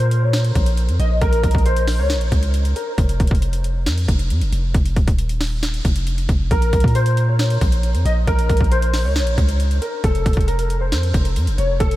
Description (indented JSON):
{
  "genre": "hip hop, trap",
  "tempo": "136 BPM",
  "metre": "4/4",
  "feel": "half-time",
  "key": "Bb harmonic minor",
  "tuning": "A4 = 440 Hz",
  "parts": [
    { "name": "dark concert grand piano", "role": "melody", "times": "0.0-2.9, 6.5-12.0 s", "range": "A4 to Eb5", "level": "-24 LUFS", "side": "left 1 dB", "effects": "ensemble chorus, tape echo" },
    { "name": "long sustained 808-style bass", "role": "bass", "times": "0.0-12.0 s", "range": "Eb1 to Bb2", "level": "-18 LUFS", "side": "equal", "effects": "none" },
    { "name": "trap drum kit", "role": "drums", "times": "0.0-12.0 s", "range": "hi-hat, kick drum, snare drum", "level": "-20 LUFS", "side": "equal", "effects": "none" }
  ],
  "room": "light reverb",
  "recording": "vinyl crackle",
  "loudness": "-16 LUFS",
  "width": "side -16 dB against mid",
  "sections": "0.0-12.0 A section",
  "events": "none",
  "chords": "0.0 Bbm; 3.0 Ebsus2; 6.5 Bbm; 10.0 F"
}